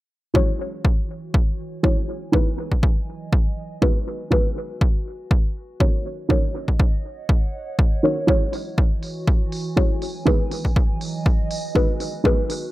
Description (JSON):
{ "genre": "deep house", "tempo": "121 BPM", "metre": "4/4", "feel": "swing 54% on 16ths", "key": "unclear", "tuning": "A4 = 438 Hz", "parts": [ { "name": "deep mellow chord stab", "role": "stabs", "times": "0.3-12.7 s", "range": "D#4 to C#5", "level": "-23 LUFS", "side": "equal", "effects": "chorus, cassette tape, sidechain pumping, tape echo" }, { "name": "electronic kick drum", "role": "drums", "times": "0.3-12.4 s", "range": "none", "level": "-19 LUFS", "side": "equal", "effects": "none" }, { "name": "warbly tape-like pad", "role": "texture", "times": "0.7-12.7 s", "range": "E3 to G#5", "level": "-34 LUFS", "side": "right 3 dB", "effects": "chorus, built-in reverb, sidechain pumping" }, { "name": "electronic hi-hat", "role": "drums", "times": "8.5-12.6 s", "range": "none", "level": "-36 LUFS", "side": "right 1 dB", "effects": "low-pass filter on hats, low-pass filter on room" } ], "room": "digital ambience", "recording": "echo-heavy mix", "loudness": "-19 LUFS", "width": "side -17 dB against mid", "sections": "0.3-12.7 A section", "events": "fade-in on ambient pad 0.3-12.7", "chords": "0.3 E69; 2.3 F#13sus4; 4.1 G#m7; 6.1 D#m7; 8.3 E69; 10.3 F#13sus4; 12.0 G#m7" }